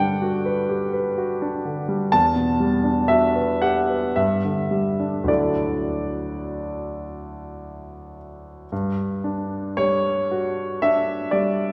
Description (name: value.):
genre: classical, impressionist solo piano.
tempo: 50-64 BPM.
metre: 3/4.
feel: rubato.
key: unclear.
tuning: A4 = 441 Hz.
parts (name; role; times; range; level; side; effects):
clear concert grand piano; solo; 0.0-11.7 s; D2 to A5; -23 LUFS; equal; none.
room: wet concert hall reverb, RT60 2.0 s.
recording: recorded in a church or concert hall.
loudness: -22 LUFS.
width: mono.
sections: 0.0-8.7 A section; 8.7-11.7 B section.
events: none.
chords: 0.0 Gmaj7; 2.1 Em11; 4.2 G5; 5.3 Dadd9; 8.7 G5.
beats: 0.21 1.17 | 2.13 3.11 4.17 | 5.28 6.45 7.59 | 8.71 9.77 10.81.